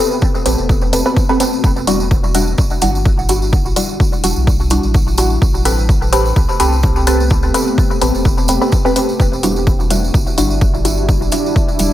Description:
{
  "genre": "dub techno",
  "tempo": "127 BPM",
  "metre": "4/4",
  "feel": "swing 54% on 16ths",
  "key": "E minor",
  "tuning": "A4 = 441 Hz",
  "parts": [
    { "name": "deep dark ambient pad", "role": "sustained chords", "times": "0.0-11.9 s", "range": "G3 to G4", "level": "-22 LUFS", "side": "left 1 dB", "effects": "chorus, built-in reverb, sidechain pumping" },
    { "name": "filtered dub chord stab", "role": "stabs", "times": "0.0-11.9 s", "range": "G3 to B4", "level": "-18 LUFS", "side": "equal", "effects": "chorus, phaser, sidechain pumping, dub echo" },
    { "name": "tambourine", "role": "percussion", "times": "0.1-11.9 s", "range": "none", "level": "-25 LUFS", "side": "right 3 dB", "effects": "none" },
    { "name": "electronic kick drum", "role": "drums", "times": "0.2-11.7 s", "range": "none", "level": "-15 LUFS", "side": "equal", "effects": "overdrive" },
    { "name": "warm sub bass", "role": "bass", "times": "0.5-11.9 s", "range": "E1 to C2", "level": "-18 LUFS", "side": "equal", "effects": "sidechain pumping" },
    { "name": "electronic hi-hat", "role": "drums", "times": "0.5-11.9 s", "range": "none", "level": "-21 LUFS", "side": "left 3 dB", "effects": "overdrive" }
  ],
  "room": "light reverb",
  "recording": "none",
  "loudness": "-12 LUFS",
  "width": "side -13 dB against mid",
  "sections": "0.0-11.9 A section",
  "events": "none",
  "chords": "0.0 Am9; 1.6 Em9; 5.4 Am9; 9.2 Em9"
}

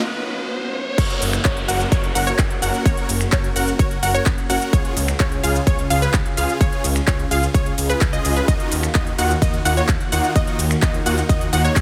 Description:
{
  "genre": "EDM, festival progressive house",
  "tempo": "128 BPM",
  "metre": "4/4",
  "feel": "straight",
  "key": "F# major",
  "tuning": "A4 = 439 Hz",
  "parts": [
    { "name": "lush unison pad", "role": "sustained chords", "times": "0.0-11.8 s", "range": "C#3 to G#4", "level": "-31 LUFS", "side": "equal", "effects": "chorus, sidechain pumping" },
    { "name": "riser and downlifter", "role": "sound effects", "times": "0.1-4.7 s", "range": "none", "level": "-32 LUFS", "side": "equal", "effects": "none" },
    { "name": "unison pluck", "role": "arpeggios", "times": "1.0-11.8 s", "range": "B4 to F#5", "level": "-27 LUFS", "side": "equal", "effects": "sidechain pumping, delay" },
    { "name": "supersaw chords", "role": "riff", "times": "1.0-11.8 s", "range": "A#3 to F#5", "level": "-28 LUFS", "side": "equal", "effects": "sidechain pumping, delay" },
    { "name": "detuned saw bass", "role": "bass", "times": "1.0-11.8 s", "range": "F#1 to D#2", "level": "-26 LUFS", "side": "equal", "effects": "chorus, sidechain pumping, high-pass filter" },
    { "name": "big-room dance drum kit", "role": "drums", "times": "1.0-11.8 s", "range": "crash cymbal, finger snaps, handclaps, hi-hat, ride cymbal, shaker", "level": "-28 LUFS", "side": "equal", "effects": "none" },
    { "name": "electronic kick drum", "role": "drums", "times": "1.0-11.8 s", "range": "none", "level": "-22 LUFS", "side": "equal", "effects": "overdrive" }
  ],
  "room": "light reverb",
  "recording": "heavily compressed radio sound",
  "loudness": "-19 LUFS",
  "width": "mono",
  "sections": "1.0-11.8 A section",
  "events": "riser 0.1-1.0; break 0.0-1.0; drop 1.0-11.8",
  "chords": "0.0 Bsus2; 1.0 F#; 4.7 C#; 8.5 D#madd9"
}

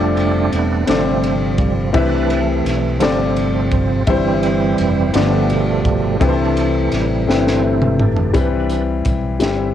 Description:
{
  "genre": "slow gospel",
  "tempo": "56 BPM (dotted quarters)",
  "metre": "6/8",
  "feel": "straight",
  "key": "C major",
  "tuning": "A4 = 442 Hz",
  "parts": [
    { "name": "warm upright piano", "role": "accompaniment", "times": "0.0-9.7 s", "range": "G2 to E5", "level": "-18 LUFS", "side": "left 6 dB", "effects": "cassette tape" },
    { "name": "bright tonewheel organ", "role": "sustained chords", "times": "0.0-9.7 s", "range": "B2 to B4", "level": "-20 LUFS", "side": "right 8 dB", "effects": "fast rotary speaker, chorus vibrato, cassette tape" },
    { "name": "fingered electric bass", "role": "bass", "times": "0.0-9.7 s", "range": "E1 to C2", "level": "-21 LUFS", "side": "equal", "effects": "none" },
    { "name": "crisp fusion drum kit", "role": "drums", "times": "0.2-9.6 s", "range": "hi-hat, kick drum, ride cymbal, snare drum, toms", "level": "-22 LUFS", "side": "equal", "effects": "cassette tape" }
  ],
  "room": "light reverb, small room ambience",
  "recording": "home recording on cassette",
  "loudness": "-14 LUFS",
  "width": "side -10 dB against mid",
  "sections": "0.0-8.3 A section; 8.3-9.7 B section",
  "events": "tonewheel organ solo 0.0-8.3; drum fill 7.3-8.3",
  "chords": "0.0 F6; 0.9 G9sus4; 1.9 Cmaj7; 3.0 G9sus4; 4.1 C/G; 5.1 G7; 6.2 C6; 8.3 Cmaj7"
}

